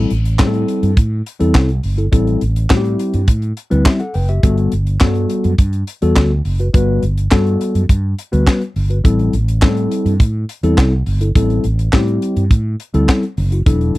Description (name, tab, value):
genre	early-eighties boogie funk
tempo	104 BPM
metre	4/4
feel	straight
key	A dorian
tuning	A4 = 436 Hz
part	mellow tine electric piano	accompaniment	0.0-14.0 s	F#3 to G5	-17 LUFS	left 2 dB	phaser
part	fretless electric bass	bass	0.0-14.0 s	E1 to A2	-16 LUFS	equal	none
part	tight funk drum kit	drums	0.1-14.0 s	handclaps, hi-hat, kick drum, snare drum	-13 LUFS	equal	none
room	little or no reverb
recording	dry, close 1970s-style studio recording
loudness	-13 LUFS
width	side -18 dB against mid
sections	0.0-14.0 A section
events	none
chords	0.0 Am7; 4.4 Gmaj9; 9.0 Am7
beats	0.39 0.97 1.55 | 2.12 2.70 3.28 3.85 | 4.43 5.01 5.59 6.16 | 6.74 7.32 7.89 8.47 | 9.05 9.62 10.20 10.78 | 11.36 11.93 12.51 13.09 | 13.66